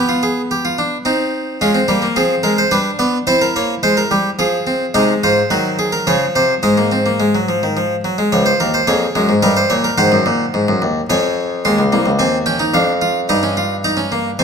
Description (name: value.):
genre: classical, baroque-style 4-part fugue for harpsichord.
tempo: 108 BPM.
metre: 3/4.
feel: straight.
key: unclear.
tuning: A4 = 440 Hz.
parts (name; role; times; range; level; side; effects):
harpsichord; solo; 0.0-14.4 s; C2 to C6; -13 LUFS; equal; none.
room: moderate recital hall reverb, RT60 1.4 s.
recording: close, detailed microphones.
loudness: -13 LUFS.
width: side -6 dB against mid.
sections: 0.0-4.9 A section; 4.9-8.3 B section; 8.3-14.4 C section.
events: none.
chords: 0.0 G7/B; 1.1 Cm; 1.6 Fm; 2.7 G; 3.3 C7; 4.4 Fm; 4.9 Ab7; 6.1 Db; 6.6 Ab5; 8.3 Db; 9.4 Eb7/G; 10.0 Ab7; 11.1 Db/F; 11.7 Ab; 12.7 Dm/F; 13.3 Eb7/G.